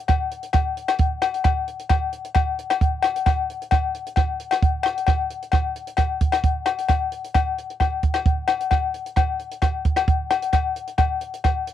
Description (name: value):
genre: highlife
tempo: 132 BPM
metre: 4/4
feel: straight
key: none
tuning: none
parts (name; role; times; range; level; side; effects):
- compact cocktail drum kit; drums; 0.1-11.7 s; hi-hat, kick drum, rim click; -22 LUFS; right 3 dB; cassette tape
- agogo bells; percussion; 0.1-11.6 s; none; -23 LUFS; left 8 dB; none
room: little or no reverb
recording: home recording on cassette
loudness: -20 LUFS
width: side -11 dB against mid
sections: 0.0-5.5 A section; 5.5-11.7 B section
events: none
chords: none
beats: | 0.08 0.54 0.99 1.44 | 1.90 2.35 2.80 3.26 | 3.71 4.17 4.62 5.07 | 5.53 5.98 6.44 6.89 | 7.35 7.80 8.26 8.71 | 9.17 9.62 10.08 10.53 | 10.99 11.44